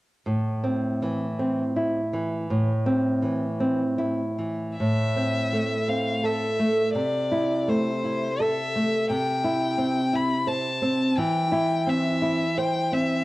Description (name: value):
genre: romantic duo for violin and classical guitar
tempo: 69-88 BPM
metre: 3/4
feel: rubato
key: A minor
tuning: A4 = 440 Hz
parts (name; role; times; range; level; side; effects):
- nylon-string guitar; accompaniment; 0.3-13.2 s; A2 to C5; -23 LUFS; equal; cassette tape
- clear violin; melody; 4.8-13.2 s; C5 to B5; -27 LUFS; left 2 dB; cassette tape
room: light reverb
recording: home recording on cassette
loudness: -22 LUFS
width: side -18 dB against mid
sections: 0.3-4.8 A section; 4.8-13.2 B section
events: none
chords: 0.3 Am; 7.0 Am/C; 9.1 C; 11.2 C/E